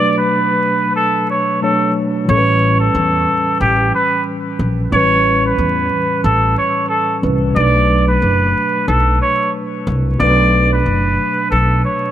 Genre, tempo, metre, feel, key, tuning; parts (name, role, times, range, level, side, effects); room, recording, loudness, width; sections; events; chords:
hip hop, boom-bap hip-hop; 91 BPM; 4/4; swing 60% on 16ths; B minor; A4 = 440 Hz
trumpet with straight mute; melody; 0.0-12.1 s; G4 to D5; -16 LUFS; right 1 dB; high-pass filter, low-pass filter, ping-pong delay
mellow tine electric piano; accompaniment; 0.0-12.1 s; A2 to C#5; -18 LUFS; equal; medium stereo tremolo, cassette tape, high-pass filter, low-pass filter
upright bass; bass; 2.3-11.8 s; F#1 to E2; -16 LUFS; equal
studio reverb; vinyl crackle; -12 LUFS; side -11 dB against mid
0.0-12.1 A section
break 0.0-2.3
0.0 Bm9; 2.3 A7; 7.6 Bm7